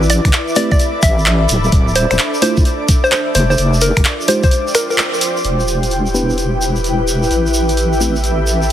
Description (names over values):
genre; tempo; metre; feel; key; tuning
UK garage, two-step garage; 129 BPM; 4/4; swing 66% on 16ths; E phrygian; A4 = 440 Hz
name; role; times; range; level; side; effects
airy breathy pad; sustained chords; 0.0-8.7 s; G4 to D6; -24 LUFS; left 1 dB; chorus, sidechain pumping
deep soft wobble bass; bass; 0.0-8.7 s; D1 to A1; -16 LUFS; equal; chorus, sidechain pumping
tube shaker; percussion; 0.0-8.7 s; none; -24 LUFS; right 2 dB; none
ethereal airy pad; texture; 0.0-8.7 s; D4 to B5; -20 LUFS; equal; ensemble chorus, built-in reverb, tremolo, sidechain pumping
hollow square pluck; melody; 0.1-5.0 s; A#4 to E5; -19 LUFS; equal; chorus, digital delay
punchy analog drum machine; drums; 0.1-8.7 s; finger snaps, handclaps, hi-hat; -18 LUFS; equal; none
electronic kick drum; drums; 0.2-4.5 s; none; -13 LUFS; equal; none
mellow tine electric piano; stabs; 0.6-8.2 s; Ab3 to C5; -20 LUFS; equal; medium stereo tremolo, low-pass filter, digital delay
room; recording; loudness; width
light reverb; heavily compressed radio sound, multiband compression; -12 LUFS; side -11 dB against mid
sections
0.0-5.4 A section; 5.4-8.7 B section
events
filter sweep on tine electric piano 0.0-5.4, 5.4-8.7; band accent 5.0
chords
0.0 A5; 1.5 D7(no3); 3.4 F5; 5.4 Em; 7.3 A7(no3)